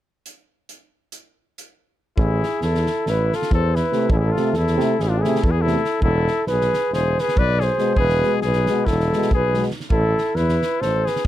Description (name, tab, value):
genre	balkan folk, Balkan brass band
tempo	279 BPM (eighths)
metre	9/8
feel	straight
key	A harmonic minor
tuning	A4 = 440 Hz
part	loose indie drum kit	percussion	0.3-11.3 s	hi-hat, kick drum, snare drum	-25 LUFS	equal	none
part	mellow flugelhorn	melody	2.2-11.3 s	F4 to D5	-22 LUFS	right 2 dB	none
part	clear trumpet	second line	2.2-11.2 s	D4 to B4	-25 LUFS	left 11 dB	none
part	warm tuba	bass	2.2-11.3 s	E1 to E2	-21 LUFS	equal	none
part	clear French horn	accompaniment	3.9-9.7 s	G#3 to A3	-24 LUFS	left 5 dB	none
part	warm euphonium	accompaniment	3.9-9.7 s	B2 to C3	-26 LUFS	right 7 dB	none
room	little or no reverb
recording	none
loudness	-17 LUFS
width	side -13 dB against mid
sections	0.2-2.2 A section; 2.2-11.3 B section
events	none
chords	0.2 N.C.; 2.2 Am; 6.0 E; 9.9 Am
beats	| 0.23 0.45 0.66 0.88 1.09 1.31 1.52 1.74 1.95 | 2.17 2.38 2.60 2.81 3.02 3.24 3.45 3.67 3.88 | 4.10 4.31 4.53 4.74 4.96 5.17 5.39 5.60 5.82 | 6.03 6.25 6.46 6.68 6.89 7.11 7.32 7.54 7.75 | 7.97 8.18 8.39 8.61 8.82 9.04 9.26 9.47 9.68 | 9.90 10.11 10.33 10.54 10.76 10.97 11.19